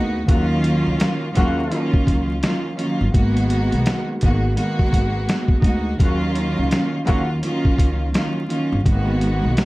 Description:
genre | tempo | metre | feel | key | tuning
hip hop, boom-bap hip-hop | 84 BPM | 4/4 | swing 61% on 16ths | Eb minor | A4 = 439 Hz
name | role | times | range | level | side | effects
warm chamber string section | accompaniment | 0.0-9.7 s | Eb3 to Gb4 | -21 LUFS | right 1 dB | cassette tape
upright bass | bass | 0.0-9.6 s | G1 to Eb2 | -22 LUFS | equal | none
mellow horn section | stabs | 0.3-7.3 s | Db3 to Gb4 | -26 LUFS | left 2 dB | slapback echo
boom bap sampler-style drum kit | drums | 0.3-9.7 s | hi-hat, kick drum, snare drum | -19 LUFS | equal | vintage 12-bit sampler grit
room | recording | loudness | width
light reverb | dark, warm production, vinyl crackle | -17 LUFS | side -19 dB against mid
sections
0.0-9.7 A section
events
none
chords
0.3 Ebm9; 3.1 Abm9; 6.0 Ebm9; 8.9 Abm9

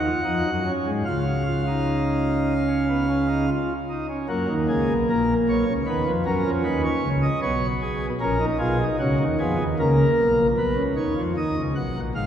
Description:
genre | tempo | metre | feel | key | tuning
classical, baroque-style 3-part fugue for pipe organ | 76 BPM | 4/4 | straight | F# major | A4 = 440 Hz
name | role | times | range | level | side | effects
pipe organ, principal chorus | solo | 0.0-12.3 s | Ab1 to F#5 | -20 LUFS | equal | none
room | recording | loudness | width
wet church reverb, RT60 3.6 s | recorded in a church or concert hall | -20 LUFS | side -9 dB against mid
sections
0.0-4.3 A section; 4.3-10.6 B section; 10.6-12.3 A section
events
none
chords
0.0 B (rootless); 1.0 C#; 4.3 F#; 5.9 B/D#; 7.4 C#7/B; 9.0 F#/C#; 10.6 B

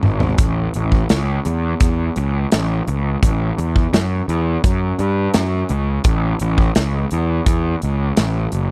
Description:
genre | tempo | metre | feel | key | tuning
blues rock power trio and southern rock | 85 BPM | 4/4 | straight | unclear | A4 = 440 Hz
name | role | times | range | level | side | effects
fuzz picked electric bass | bass | 0.0-8.7 s | F#1 to G2 | -20 LUFS | equal | overdrive
big rock drum kit | drums | 0.0-8.7 s | hi-hat, kick drum, snare drum, toms | -20 LUFS | equal | none
room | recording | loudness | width
little or no reverb | dry, close 1970s-style studio recording | -18 LUFS | mono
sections
0.0-8.7 A section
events
drum fill 0.0-0.4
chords
none

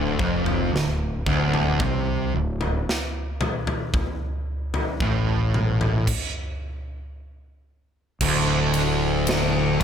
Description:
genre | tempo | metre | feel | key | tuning
stoner and doom metal | 56 BPM | 4/4 | straight | D minor | A4 = 441 Hz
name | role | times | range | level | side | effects
fuzz guitar | riff | 0.0-9.8 s | D2 to C3 | -22 LUFS | equal | distortion
growling fingered electric bass | bass | 0.0-9.8 s | D1 to C2 | -27 LUFS | equal | overdrive
big rock drum kit | drums | 0.2-9.8 s | crash cymbal, kick drum, ride cymbal, snare drum, toms | -26 LUFS | equal | none
room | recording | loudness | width
light reverb | none | -21 LUFS | side -8 dB against mid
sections
0.0-8.2 A section; 8.2-9.8 B section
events
stop 6.1-8.2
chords
0.0 Dm; 8.2 N.C.

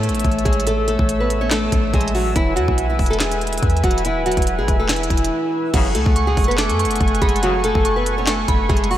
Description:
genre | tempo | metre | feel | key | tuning
hip hop, trap | 142 BPM | 4/4 | half-time | F# minor | A4 = 436 Hz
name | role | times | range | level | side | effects
nylon-string guitar | melody | 0.0-9.0 s | E3 to C#5 | -21 LUFS | equal | tape echo
warm analog pad | sustained chords | 0.0-9.0 s | A4 to E6 | -24 LUFS | left 1 dB | chorus
clean 808-style bass | bass | 0.0-9.0 s | D1 to A2 | -22 LUFS | equal | none
trap drum kit | drums | 0.0-9.0 s | crash cymbal, handclaps, hi-hat, kick drum, snare drum | -21 LUFS | equal | none
bright brass ensemble | stabs | 5.7-7.6 s | C#2 to C#3 | -32 LUFS | left 3 dB | none
soft synth bell | second line | 6.2-9.0 s | B5 to D6 | -26 LUFS | right 4 dB | chorus, tape echo
room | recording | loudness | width
moderate cathedral reverb, RT60 5.3 s | dreamy mix soaked in reverb | -16 LUFS | side -12 dB against mid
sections
0.0-5.7 A section; 5.7-9.0 B section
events
break 5.3-5.7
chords
0.0 A; 2.4 E; 5.7 F#madd9

